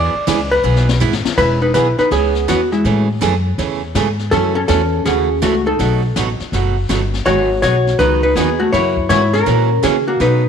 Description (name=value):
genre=country, western swing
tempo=163 BPM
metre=4/4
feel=swing 65% on 8ths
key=E major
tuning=A4 = 440 Hz
part: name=hollow-body jazz guitar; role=melody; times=0.0-10.5 s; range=G#3 to D5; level=-15 LUFS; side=left 1 dB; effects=slapback echo
part: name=picked steel-string acoustic guitar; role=accompaniment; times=0.0-10.4 s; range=B2 to G#4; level=-20 LUFS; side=right 10 dB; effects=none
part: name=upright bass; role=bass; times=0.0-10.5 s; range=E1 to C#3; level=-18 LUFS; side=left 1 dB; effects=none
part: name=jazz brush drum kit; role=drums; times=0.3-10.5 s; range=brushed snare drum, crash cymbal, hi-hat, kick drum, ride cymbal, snare drum, toms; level=-25 LUFS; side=left 7 dB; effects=none
room=light reverb, small room ambience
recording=1960s-style stereo with parts hard left and right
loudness=-13 LUFS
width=side -7 dB against mid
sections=0.0-1.4 A section; 1.4-10.5 B section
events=hollow-body jazz guitar solo 0.0-1.4; drum fill 0.6-1.4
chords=0.0 E; 1.4 E6; 2.8 Amaj7; 4.3 F#m7; 5.8 B7; 7.3 G#m7; 8.7 F#7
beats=0.28 0.64 1.01 | 1.38 1.75 2.11 2.48 | 2.85 3.21 3.58 3.95 | 4.32 4.69 5.05 5.42 | 5.79 6.16 6.52 6.89 | 7.26 7.63 8.00 8.36 | 8.73 9.10 9.47 9.83 | 10.20